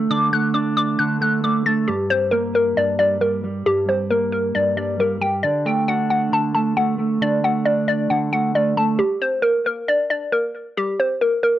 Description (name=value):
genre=hip hop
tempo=135 BPM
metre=4/4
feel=half-time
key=G harmonic minor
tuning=A4 = 441 Hz
part: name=mellow electric guitar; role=accompaniment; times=0.0-9.0 s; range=G2 to D4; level=-22 LUFS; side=right 2 dB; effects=spring reverb, low-pass filter
part: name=hollow square pluck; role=melody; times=0.1-11.6 s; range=G4 to A6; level=-19 LUFS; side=left 1 dB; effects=chorus, low-pass filter
room=light reverb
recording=dry, gritty hardware recording, nothing above 10.3 kHz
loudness=-17 LUFS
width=side -13 dB against mid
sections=0.0-1.9 A section; 1.9-9.0 B section; 9.0-11.6 C section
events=none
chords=0.0 D5; 1.9 Gm; 5.4 D5; 9.0 N.C.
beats=| 0.10 0.55 0.99 1.44 | 1.88 2.33 2.77 3.22 | 3.66 4.11 4.55 4.99 | 5.44 5.88 6.33 6.77 | 7.22 7.66 8.11 8.55 | 8.99 9.44 9.88 10.33 | 10.77 11.22